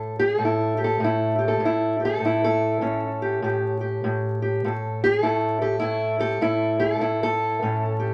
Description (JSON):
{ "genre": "acoustic country blues, solo or duo", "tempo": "100 BPM", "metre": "4/4", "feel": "swing 63% on 8ths", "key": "A mixolydian", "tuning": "A4 = 440 Hz", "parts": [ { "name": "fingerpicked steel-string acoustic guitar", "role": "solo", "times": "0.0-8.1 s", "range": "A2 to A4", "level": "-24 LUFS", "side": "equal", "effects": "none" } ], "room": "moderate club reverb, RT60 0.6 s", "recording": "vinyl crackle", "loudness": "-23 LUFS", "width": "mono", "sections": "0.0-8.1 A section", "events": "none", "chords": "0.0 A7", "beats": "0.41 1.02 1.62 | 2.22 2.82 3.42 4.02 | 4.63 5.23 5.83 6.43 | 7.04 7.64" }